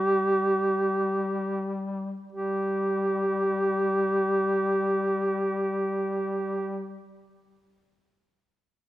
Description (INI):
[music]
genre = caucasian folk, Caucasian lament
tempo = free time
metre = none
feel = none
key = unclear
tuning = A4 = 437 Hz
[part]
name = mellow duduk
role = melody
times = 0.0-7.0 s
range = G4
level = -25 LUFS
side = right 1 dB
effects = none
[part]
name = warm duduk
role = drone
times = 0.0-6.9 s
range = G3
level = -32 LUFS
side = left 3 dB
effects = none
[sound]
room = moderate scoring stage reverb, RT60 1.8 s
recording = dark, warm production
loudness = -24 LUFS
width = side -15 dB against mid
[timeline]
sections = 0.0-2.3 A section; 2.3-7.0 B section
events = slowing down 0.0-2.3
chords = none